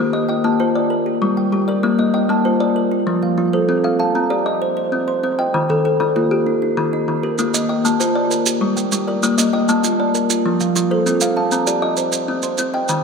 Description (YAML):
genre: southern african traditional, mbira-style interlocking cycle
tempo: 130 BPM (dotted quarters)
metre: 12/8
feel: straight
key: Bb major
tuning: A4 = 441 Hz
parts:
  - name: kalimba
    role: arpeggios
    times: 0.0-13.0 s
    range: Eb3 to G5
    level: -18 LUFS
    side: left 3 dB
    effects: none
  - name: kalimba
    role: arpeggios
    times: 0.0-13.0 s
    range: Eb3 to C6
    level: -20 LUFS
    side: right 4 dB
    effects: diffuse ambient delay
  - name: maracas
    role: percussion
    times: 7.4-13.0 s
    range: none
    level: -23 LUFS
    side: right 8 dB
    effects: none
room: wet plate reverb, RT60 3.2 s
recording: dreamy mix soaked in reverb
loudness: -15 LUFS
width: side -5 dB against mid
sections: 0.0-13.0 A section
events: none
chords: 0.0 Bb; 0.9 Gm; 1.8 Bb; 2.8 F; 3.7 Cm; 5.5 Eb; 7.4 Bb; 8.3 Gm; 9.2 Bb; 10.1 F; 11.1 Cm